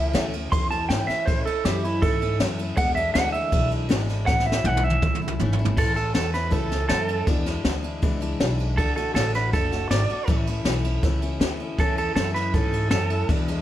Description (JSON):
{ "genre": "rockabilly", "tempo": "160 BPM", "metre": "4/4", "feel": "straight", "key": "A major", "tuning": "A4 = 441 Hz", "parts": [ { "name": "electric guitar through a small old amp", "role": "melody", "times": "0.0-13.3 s", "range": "E4 to C6", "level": "-25 LUFS", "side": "right 3 dB", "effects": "tape echo" }, { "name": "picked steel-string acoustic guitar", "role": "accompaniment", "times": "0.0-13.6 s", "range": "E2 to F#4", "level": "-30 LUFS", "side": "left 4 dB", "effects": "none" }, { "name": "upright bass", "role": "bass", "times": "0.0-13.6 s", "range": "F#1 to A2", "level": "-27 LUFS", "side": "equal", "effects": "none" }, { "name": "jazz brush drum kit", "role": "drums", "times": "0.1-13.6 s", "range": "crash cymbal, kick drum, ride cymbal, snare drum, toms", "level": "-25 LUFS", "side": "equal", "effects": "none" } ], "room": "light reverb", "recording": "none", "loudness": "-21 LUFS", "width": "side -12 dB against mid", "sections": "0.0-5.8 A section; 5.8-13.6 B section", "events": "clean electric guitar solo 0.0-5.8; drum fill 4.3-5.8", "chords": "0.0 A; 2.8 E7; 4.3 A; 7.3 E7; 8.8 D; 10.3 A" }